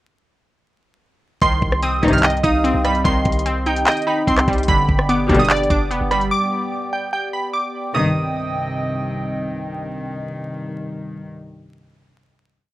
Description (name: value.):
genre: hip hop, trap.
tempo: 147 BPM.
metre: 4/4.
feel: half-time.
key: C harmonic minor.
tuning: A4 = 440 Hz.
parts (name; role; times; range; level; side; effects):
glassy digital keys; melody; 1.4-9.1 s; G5 to F6; -22 LUFS; right 2 dB; chorus.
glassy wavetable pluck; accompaniment; 1.4-7.1 s; D3 to Eb5; -21 LUFS; right 1 dB; chorus.
hollow soft pad; sustained chords; 1.4-11.3 s; C3 to G5; -27 LUFS; equal; chorus.
warm 808-style bass; bass; 1.4-6.3 s; F1 to C2; -23 LUFS; equal; none.
trap drum kit; drums; 1.4-6.3 s; handclaps, hi-hat, kick drum, rim click; -20 LUFS; equal; none.
warm studio string section; stabs; 2.0-2.3, 5.3-11.3 s; C2 to G3; -23 LUFS; left 2 dB; none.
mellow hollow concert flute; second line; 2.2-4.6 s; Eb5 to G5; -29 LUFS; left 3 dB; tape echo.
room: light reverb.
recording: rough home demo mix, vinyl crackle.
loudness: -17 LUFS.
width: side -16 dB against mid.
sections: 1.4-7.9 hook; 7.9-11.2 final chord.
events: none.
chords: 1.4 Cm; 4.7 G; 7.9 Cm.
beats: | 1.42 1.82 2.23 2.64 | 3.05 3.46 3.87 4.27 | 4.68 5.09 5.50 5.91 | 6.31 6.72 7.13 7.54 | 7.95 8.36 8.76 9.17 | 9.58 9.99 10.40 10.80.